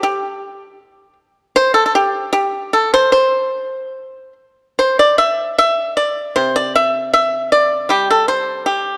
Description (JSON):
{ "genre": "chinese traditional, Chinese solo plucked strings", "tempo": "72-80 BPM", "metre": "2/4", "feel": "rubato", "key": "G zhi mode", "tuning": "A4 = 442 Hz", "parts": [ { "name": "pipa", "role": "solo", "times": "0.0-9.0 s", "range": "C3 to E5", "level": "-16 LUFS", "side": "equal", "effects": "none" } ], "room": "light reverb", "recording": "dark, warm production", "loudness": "-16 LUFS", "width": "mono", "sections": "0.0-9.0 A section", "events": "none", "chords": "none" }